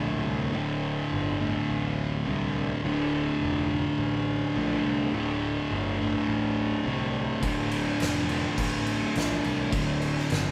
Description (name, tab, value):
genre	stoner and doom metal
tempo	104 BPM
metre	4/4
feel	straight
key	unclear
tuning	A4 = 440 Hz
part	thick fuzz guitar	riff	0.0-10.5 s	D2 to D3	-34 LUFS	equal	distortion
part	thick fuzz guitar	riff	0.0-10.5 s	D2 to D3	-31 LUFS	equal	distortion
part	fuzz picked electric bass	bass	0.0-10.5 s	D1 to C2	-35 LUFS	equal	overdrive
part	oversized low-tuned drum kit	drums	7.4-10.4 s	crash cymbal, kick drum, snare drum	-33 LUFS	equal	none
room	moderate studio reverb, RT60 0.5 s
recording	band playing live in one room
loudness	-28 LUFS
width	mono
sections	0.0-10.5 A section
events	none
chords	0.0 D5